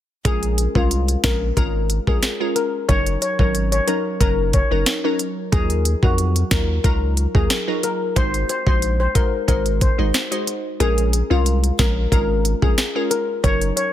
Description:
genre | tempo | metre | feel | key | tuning
dancehall | 91 BPM | 4/4 | straight | Bb minor | A4 = 440 Hz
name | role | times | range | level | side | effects
glassy wavetable pluck | accompaniment | 0.2-13.7 s | Gb3 to C5 | -24 LUFS | equal | chorus
steel pan | melody | 0.3-13.9 s | F4 to Db5 | -24 LUFS | left 4 dB | digital delay
punchy sub bass | bass | 0.3-13.7 s | Gb1 to F2 | -20 LUFS | equal | none
afro-pop drum kit | drums | 0.3-13.9 s | hi-hat, kick drum, snare drum | -20 LUFS | equal | none
room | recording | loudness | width
little or no reverb | dense, heavily limited modern master | -17 LUFS | side -12 dB against mid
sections
0.3-13.9 A section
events
kick muted 10.8-11.5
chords
0.3 Bbm7; 2.9 Gb6; 5.5 Ebmadd9; 8.2 Ab7; 10.8 Bbm7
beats
| 0.25 0.91 1.57 2.23 | 2.89 3.55 4.21 4.87 | 5.53 6.18 6.84 7.50 | 8.16 8.82 9.48 10.14 | 10.80 11.46 12.12 12.78 | 13.44

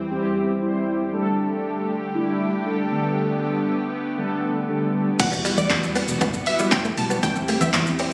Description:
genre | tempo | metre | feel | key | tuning
dance-pop | 118 BPM | 4/4 | straight | E minor | A4 = 440 Hz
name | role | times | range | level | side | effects
lush unison pad | sustained chords | 0.0-8.1 s | D3 to G4 | -30 LUFS | equal | chorus, sidechain pumping
mellow synth brass | accompaniment | 0.1-8.1 s | E2 to C5 | -26 LUFS | equal | chorus, sidechain pumping
unison pluck | melody | 5.2-8.0 s | D5 to A5 | -30 LUFS | equal | sidechain pumping, digital delay
vintage muted fingered electric bass | bass | 5.2-7.9 s | E1 to E2 | -30 LUFS | equal | sidechain pumping
punchy analog drum machine | drums | 5.2-8.1 s | crash cymbal, handclaps, hi-hat, kick drum, shaker, snare drum | -26 LUFS | equal | none
direct-recorded clean electric guitar | riff | 5.3-8.1 s | G3 to C4 | -30 LUFS | equal | ensemble chorus
room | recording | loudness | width
moderate lush hall reverb, RT60 2.2 s | recorded on a phone in the room, studio reverb | -23 LUFS | mono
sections
0.0-5.2 A section; 5.2-8.1 B section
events
drop 5.2-8.1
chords
0.0 C/E; 1.1 Dsus4; 2.9 Gadd9/D; 5.2 Emadd9; 7.2 C/E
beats
0.11 0.62 | 1.13 1.64 2.15 2.65 | 3.16 3.67 4.18 4.69 | 5.20 5.70 6.21 6.72 | 7.23 7.74

